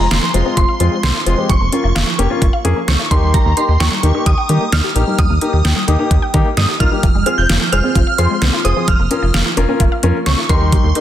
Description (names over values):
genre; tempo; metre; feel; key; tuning
synth-pop; 130 BPM; 4/4; straight; unclear; A4 = 439 Hz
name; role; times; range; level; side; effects
shimmering bell with halo; melody; 0.0-11.0 s; Bb5 to G6; -21 LUFS; right 2 dB; ensemble chorus, tape echo
resonant blip pluck; arpeggios; 0.0-11.0 s; F3 to G5; -23 LUFS; right 1 dB; phaser, tape echo
round analog bass; bass; 0.0-10.9 s; F1 to Eb3; -15 LUFS; right 1 dB; none
pop drum kit; drums; 0.1-11.0 s; hi-hat, kick drum, snare drum; -16 LUFS; equal; overdrive
warm baby grand piano; accompaniment; 0.3-11.0 s; Ab3 to Bb4; -20 LUFS; left 4 dB; none
room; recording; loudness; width
light reverb, digital ambience; dense, heavily limited modern master; -12 LUFS; side -11 dB against mid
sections
0.0-11.0 A section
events
none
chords
0.0 Fm; 1.5 Bbm/F; 3.1 Eb; 7.0 Fm; 8.9 Bbm/F; 10.5 Eb